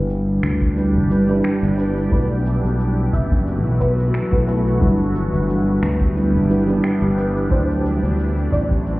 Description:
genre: sunset chillout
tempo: 89 BPM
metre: 4/4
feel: swing 55% on 16ths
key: G major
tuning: A4 = 438 Hz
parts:
  - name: mellow FM electric piano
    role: accompaniment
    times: 0.0-9.0 s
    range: F#3 to D5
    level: -22 LUFS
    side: equal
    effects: chorus, auto-pan, tape echo
  - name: shimmering ambient pad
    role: sustained chords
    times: 0.3-9.0 s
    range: E3 to G4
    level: -25 LUFS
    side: equal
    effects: chorus, built-in reverb, phaser
  - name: sustaining fretless electric bass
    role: bass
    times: 0.0-9.0 s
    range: F#1 to D2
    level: -19 LUFS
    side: equal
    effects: none
  - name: electronic shaker and finger snaps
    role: drums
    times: 0.1-9.0 s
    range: none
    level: -34 LUFS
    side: equal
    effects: none
  - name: electronic kick drum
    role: drums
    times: 0.6-8.8 s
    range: none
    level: -20 LUFS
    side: equal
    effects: overdrive
  - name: soft round pluck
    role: arpeggios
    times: 1.4-8.8 s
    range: E4 to E5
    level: -29 LUFS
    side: equal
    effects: ensemble chorus, tape echo
room: moderate lush hall reverb, RT60 2.4 s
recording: heard muffled through a wall, stone room reverb, EQ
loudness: -16 LUFS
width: side -19 dB against mid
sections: 0.0-9.0 A section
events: none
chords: 0.0 G6; 2.1 B7sus4; 4.8 G6; 7.5 D9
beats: 0.10 0.77 1.45 | 2.12 2.79 3.47 4.14 | 4.82 5.49 6.16 6.84 | 7.51 8.19 8.86

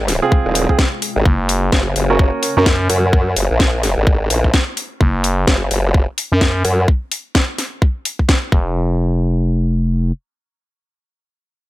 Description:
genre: bass house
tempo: 128 BPM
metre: 4/4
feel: swing 60% on 16ths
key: unclear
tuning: A4 = 439 Hz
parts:
  - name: sweeping resonant pad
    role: sustained chords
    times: 0.0-3.1 s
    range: C3 to Gb4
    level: -28 LUFS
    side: left 3 dB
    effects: chorus, sidechain pumping
  - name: formant-sweep wobble bass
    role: bass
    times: 0.0-6.9 s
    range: Eb1 to Gb2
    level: -16 LUFS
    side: equal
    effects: chorus, overdrive, sidechain pumping
  - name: garage drum kit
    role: drums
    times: 0.1-8.4 s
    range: hi-hat, snare drum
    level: -19 LUFS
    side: left 1 dB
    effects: none
  - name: warm grand piano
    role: stabs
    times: 0.2-2.6 s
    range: C4 to Bb4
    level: -20 LUFS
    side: right 4 dB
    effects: sidechain pumping, dub echo
  - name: electronic kick drum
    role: drums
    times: 0.3-8.6 s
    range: none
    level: -14 LUFS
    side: equal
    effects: none
  - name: growling FM bass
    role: bass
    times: 1.3-10.1 s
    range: F1 to Gb2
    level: -16 LUFS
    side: equal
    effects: overdrive, sidechain pumping
room: digital ambience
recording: none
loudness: -14 LUFS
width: side -17 dB against mid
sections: 0.0-8.8 A section; 8.8-11.7 B section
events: drop 0.0-8.8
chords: 0.0 Fm; 1.3 Gb; 8.5 N.C.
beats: 0.32 0.79 | 1.26 1.73 2.19 2.66 | 3.13 3.60 4.07 4.54 | 5.01 5.47 5.94 6.41 | 6.88 7.35 7.82 8.29 | 8.76 9.22 9.69

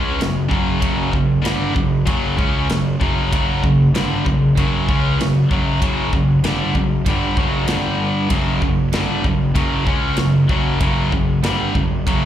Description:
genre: heavy metal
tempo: 96 BPM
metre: 4/4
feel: straight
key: unclear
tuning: A4 = 439 Hz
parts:
  - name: distorted electric guitar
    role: riff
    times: 0.0-12.3 s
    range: F#2 to C#4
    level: -23 LUFS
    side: right 10 dB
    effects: overdrive
  - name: high-gain distorted guitar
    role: riff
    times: 0.0-12.3 s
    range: F#2 to C#4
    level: -20 LUFS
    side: left 4 dB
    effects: distortion
  - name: fuzz picked electric bass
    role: bass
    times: 0.0-12.3 s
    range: F#1 to C#2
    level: -21 LUFS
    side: equal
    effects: overdrive
  - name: modern studio drum kit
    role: drums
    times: 0.2-12.2 s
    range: kick drum, ride cymbal, snare drum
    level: -22 LUFS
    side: equal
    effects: none
room: small room ambience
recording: live gig heard through the venue's PA, club reverb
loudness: -15 LUFS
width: side -11 dB against mid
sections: 0.0-12.3 A section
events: none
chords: 0.0 F#5; 7.7 G5; 8.3 F#5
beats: 0.21 | 0.83 1.45 2.08 2.70 | 3.32 3.94 4.57 5.19 | 5.82 6.44 7.06 7.69 | 8.31 8.94 9.56 10.19 | 10.81 11.44 12.07

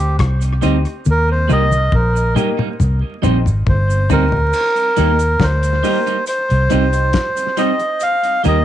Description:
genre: roots reggae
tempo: 69 BPM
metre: 4/4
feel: straight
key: Eb major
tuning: A4 = 440 Hz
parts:
  - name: melodica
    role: melody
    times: 0.0-8.6 s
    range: G4 to F5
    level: -18 LUFS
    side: right 1 dB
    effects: tape echo
  - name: vintage muted fingered electric bass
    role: bass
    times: 0.0-8.6 s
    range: G1 to Eb2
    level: -15 LUFS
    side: equal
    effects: none
  - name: cloth-damped thuddy drum kit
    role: drums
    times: 0.2-8.6 s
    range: crash cymbal, hi-hat, kick drum, rim click, snare drum, toms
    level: -21 LUFS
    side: left 2 dB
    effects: none
  - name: cabasa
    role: percussion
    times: 0.4-8.6 s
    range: none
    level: -37 LUFS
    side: right 15 dB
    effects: none
  - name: clean electric guitar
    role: accompaniment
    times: 0.6-8.6 s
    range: G3 to Eb4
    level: -22 LUFS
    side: right 10 dB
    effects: tape echo
  - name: warm upright piano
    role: stabs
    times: 0.6-8.6 s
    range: Eb4 to C5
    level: -24 LUFS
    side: left 13 dB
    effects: none
room: light reverb, small room ambience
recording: 1960s-style stereo with parts hard left and right, vinyl crackle, nothing above 10.9 kHz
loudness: -13 LUFS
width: side -11 dB against mid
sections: 0.0-4.5 A section; 4.5-8.6 B section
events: melodica solo 0.0-4.5; drum fill 1.1-4.5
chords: 0.0 Cm; 1.1 Eb; 2.8 Cm; 4.5 Eb; 6.3 Cm; 8.0 Eb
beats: 0.19 | 1.06 1.93 2.80 3.67 | 4.54 5.41 6.28 7.14 | 8.01

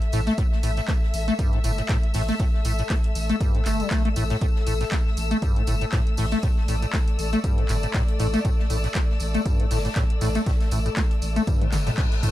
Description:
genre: acid house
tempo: 119 BPM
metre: 4/4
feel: swing 56% on 16ths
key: unclear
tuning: A4 = 440 Hz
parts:
  - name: punchy analog drum machine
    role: drums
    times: 0.0-12.3 s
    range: handclaps, hi-hat, toms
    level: -33 LUFS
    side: equal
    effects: none
  - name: soft-mallet drum kit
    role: drums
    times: 0.0-12.3 s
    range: hi-hat, snare drum, tambourine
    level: -44 LUFS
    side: equal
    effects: high-pass filter on hats, high-pass filter on snare, high-pass filter on perc, high-pass filter on room
  - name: rich studio string section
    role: texture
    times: 0.0-12.3 s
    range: A3 to E6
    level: -31 LUFS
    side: left 3 dB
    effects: sidechain pumping
  - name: liquid acid bass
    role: riff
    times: 0.1-12.3 s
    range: G2 to A3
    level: -26 LUFS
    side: left 1 dB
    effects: wide subtle chorus, sidechain pumping, ping-pong delay
  - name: saturated sub bass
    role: bass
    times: 0.1-12.3 s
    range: G1 to A1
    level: -26 LUFS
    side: equal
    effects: sidechain pumping
  - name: tambourine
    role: percussion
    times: 0.1-12.3 s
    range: none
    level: -40 LUFS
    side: right 2 dB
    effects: none
  - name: electronic kick drum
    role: drums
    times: 0.4-12.1 s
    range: none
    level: -23 LUFS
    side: equal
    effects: none
  - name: reverse cymbal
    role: sound effects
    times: 11.6-12.3 s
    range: none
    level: -34 LUFS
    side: left 5 dB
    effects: none
room: little or no reverb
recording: dark, warm production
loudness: -21 LUFS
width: side -14 dB against mid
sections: 0.0-12.3 A section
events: drum fill 11.5-12.3; reverse cymbal 11.6-12.3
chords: 0.0 A5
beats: | 0.38 0.89 1.39 1.89 | 2.40 2.90 3.41 3.91 | 4.42 4.92 5.42 5.93 | 6.43 6.94 7.44 7.94 | 8.45 8.95 9.46 9.96 | 10.46 10.97 11.47 11.98

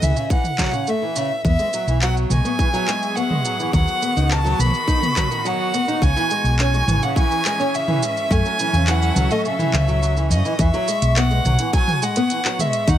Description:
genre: folktronica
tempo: 105 BPM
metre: 4/4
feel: straight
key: E major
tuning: A4 = 440 Hz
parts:
  - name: warm violin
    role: melody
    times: 0.0-13.0 s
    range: D#5 to B5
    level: -22 LUFS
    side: equal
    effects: digital delay
  - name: nylon-string guitar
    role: arpeggios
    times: 0.0-13.0 s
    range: C#3 to D#4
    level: -24 LUFS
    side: equal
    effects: none
  - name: hollow-body short-scale fingered electric bass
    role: bass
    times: 0.0-13.0 s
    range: G#1 to F#2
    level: -18 LUFS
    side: equal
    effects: none
  - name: organic electronic drum kit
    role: drums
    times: 0.0-13.0 s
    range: handclaps, hi-hat, shaker, toms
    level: -25 LUFS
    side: right 1 dB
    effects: none
  - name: electronic kick drum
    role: drums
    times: 0.3-13.0 s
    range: none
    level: -20 LUFS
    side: equal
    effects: none
  - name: clear string quartet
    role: sustained chords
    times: 1.4-10.6 s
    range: D#3 to E5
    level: -30 LUFS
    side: right 1 dB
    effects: none
  - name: flickering grainy texture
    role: texture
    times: 1.8-13.0 s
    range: C#6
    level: -33 LUFS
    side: equal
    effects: built-in reverb
room: little or no reverb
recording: none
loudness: -17 LUFS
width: side -11 dB against mid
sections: 0.0-10.6 A section; 10.6-13.0 B section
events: kick drops out 9.4-10.6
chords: 0.0 F#7(no3); 1.4 Eadd9; 3.7 B; 6.0 C#m; 8.3 F#m7; 10.6 Eadd9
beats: 0.31 0.88 | 1.45 2.02 2.59 3.16 | 3.73 4.31 4.88 5.45 | 6.02 6.59 7.16 7.74 | 8.31 8.88 9.45 10.02 | 10.59 11.16 11.73 12.31 | 12.88

